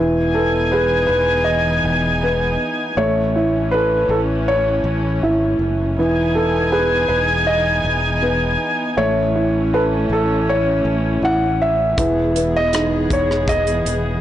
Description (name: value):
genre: pop ballad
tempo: 80 BPM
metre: 4/4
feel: straight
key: E major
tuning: A4 = 440 Hz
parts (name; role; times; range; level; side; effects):
- warm upright piano; accompaniment; 0.0-14.2 s; E3 to A4; -21 LUFS; right 1 dB; none
- warm studio string section; sustained chords; 0.0-14.2 s; E3 to G#5; -21 LUFS; equal; none
- fingered electric bass; bass; 0.0-14.2 s; E1 to A1; -23 LUFS; left 1 dB; none
- warm baby grand piano; melody; 0.3-14.2 s; A4 to F#5; -20 LUFS; equal; ping-pong delay
- modern studio drum kit; drums; 12.0-14.0 s; hi-hat, kick drum, rim click; -24 LUFS; equal; none
room: light reverb, studio reverb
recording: blown-out, overdriven recording, overdrive, nothing above 10.4 kHz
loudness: -15 LUFS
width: side -12 dB against mid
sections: 0.0-14.2 A section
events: none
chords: 0.0 Emaj7; 3.0 A; 6.0 Emaj7; 9.0 A; 12.0 Emaj7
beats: 0.72 1.48 2.23 | 2.98 3.73 4.47 5.22 | 5.97 6.72 7.47 8.22 | 8.97 9.72 10.47 11.22 | 11.97 12.72 13.47